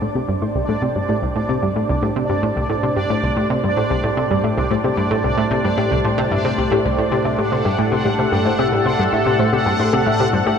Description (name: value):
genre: ambient, sequencer-driven space music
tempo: 112 BPM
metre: 4/4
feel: straight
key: A dorian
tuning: A4 = 440 Hz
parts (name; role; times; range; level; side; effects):
- sweeping resonant pad; sustained chords; 0.0-10.6 s; A2 to C5; -23 LUFS; equal; chorus, shimmer reverb
- warbly dusty pluck; arpeggios; 0.0-10.6 s; G4 to C6; -25 LUFS; left 5 dB; chorus, auto-pan, ping-pong delay, shimmer reverb
- analog pluck; riff; 0.0-10.6 s; C2 to C3; -20 LUFS; equal; chorus, ping-pong delay, shimmer reverb
- bubbling stepped-filter texture; texture; 0.0-10.6 s; D4 to F#5; -22 LUFS; right 2 dB; chorus, built-in reverb, shimmer reverb
room: wet huge ambient reverb, RT60 8.5 s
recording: dreamy mix soaked in reverb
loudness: -16 LUFS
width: side -7 dB against mid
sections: 0.0-10.6 A section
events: fade-in on synth arpeggio sound 0.0-10.6; fade-in on analog synth pad 0.0-10.6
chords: 0.0 Am7